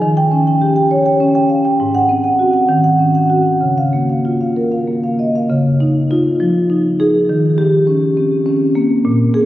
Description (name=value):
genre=classical, contemporary piece for solo marimba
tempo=67 BPM (dotted quarters)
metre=6/8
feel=rubato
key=unclear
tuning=A4 = 442 Hz
part: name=marimba with medium mallets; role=solo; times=0.0-9.5 s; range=Ab2 to G5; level=-12 LUFS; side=equal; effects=none
room=wet church reverb, RT60 3.6 s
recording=recorded on a phone in the room, club reverb, compression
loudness=-12 LUFS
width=side -14 dB against mid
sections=0.0-5.5 A section; 5.5-9.5 A section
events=none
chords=0.0 Eb7; 1.8 Ab7; 2.7 Ebm7; 3.6 Db6; 5.5 Dbadd9; 6.4 Fm7; 7.3 Eb7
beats=| 0.03 0.91 | 1.79 2.69 | 3.61 4.56 | 5.50 6.41 | 7.30 8.18 | 9.06